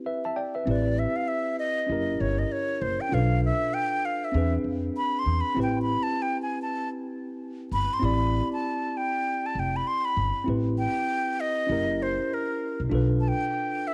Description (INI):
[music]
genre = hip hop, jazz-hop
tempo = 98 BPM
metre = 4/4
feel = swing 60% on 16ths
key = A minor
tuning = A4 = 440 Hz
[part]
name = tine electric piano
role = accompaniment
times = 0.0-13.9 s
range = C4 to A5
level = -32 LUFS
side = equal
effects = none
[part]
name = breathy silver concert flute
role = melody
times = 0.7-13.9 s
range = A#4 to C6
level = -30 LUFS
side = equal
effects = none
[part]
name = upright bass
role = bass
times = 0.7-13.3 s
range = F1 to F2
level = -30 LUFS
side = equal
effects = none
[sound]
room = light reverb, studio reverb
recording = worn, warbling old tape, cassette tape, vinyl crackle, warbly pitch drift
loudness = -27 LUFS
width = mono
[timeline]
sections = 0.7-10.5 A section; 10.5-13.9 B section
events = break 0.0-0.7; flute solo 0.7-10.5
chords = 0.0 Am9; 1.9 F#7b9; 3.1 Bm7b5; 4.3 E7b13; 5.6 Am9; 11.7 F#7b9; 12.9 Bm7b5